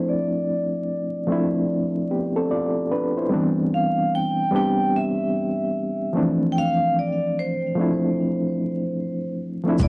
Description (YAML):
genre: lo-fi hip hop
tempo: 74 BPM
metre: 4/4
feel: swing 62% on 16ths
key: D dorian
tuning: A4 = 440 Hz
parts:
  - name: vibraphone with hard mallets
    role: melody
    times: 0.0-9.9 s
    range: C5 to G5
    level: -25 LUFS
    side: right 1 dB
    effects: low-pass filter, cassette tape
  - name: overdriven reed electric piano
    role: accompaniment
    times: 0.0-9.9 s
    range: E3 to D5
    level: -21 LUFS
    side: equal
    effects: fast tremolo, cassette tape
  - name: upright bass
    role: bass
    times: 9.8-9.9 s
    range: E1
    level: -18 LUFS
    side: equal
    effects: none
  - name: booming analog drum machine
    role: drums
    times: 9.8-9.9 s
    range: hi-hat, kick drum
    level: -22 LUFS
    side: equal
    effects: none
  - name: tube shaker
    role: percussion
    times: 9.8-9.9 s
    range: none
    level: -42 LUFS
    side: right 3 dB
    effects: none
room: wet studio reverb, RT60 0.6 s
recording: home recording on cassette, vinyl crackle, nothing above 10.8 kHz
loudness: -20 LUFS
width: side -27 dB against mid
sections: 0.0-9.8 A section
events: filter sweep 0.0-9.8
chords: 0.0 Dm9; 3.3 Cmaj7; 6.1 Dm9